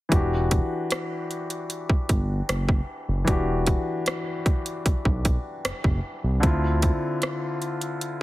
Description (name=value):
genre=contemporary R&B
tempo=76 BPM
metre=4/4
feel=straight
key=E minor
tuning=A4 = 440 Hz
part: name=warm grand piano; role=accompaniment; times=0.1-8.2 s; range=D3 to G4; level=-28 LUFS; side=left 2 dB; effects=none
part: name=smooth gliding synth bass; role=bass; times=0.1-6.9 s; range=E1 to D2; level=-25 LUFS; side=equal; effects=none
part: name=trap drum kit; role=drums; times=0.1-8.2 s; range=hi-hat, kick drum, rim click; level=-24 LUFS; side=equal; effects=none
room=little or no reverb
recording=heavily compressed radio sound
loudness=-23 LUFS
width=side -17 dB against mid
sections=0.1-8.2 A section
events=none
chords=0.1 Em9; 6.4 Dm9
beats=| 0.12 0.91 1.70 2.49 | 3.28 4.07 4.86 5.64 | 6.43 7.22 8.01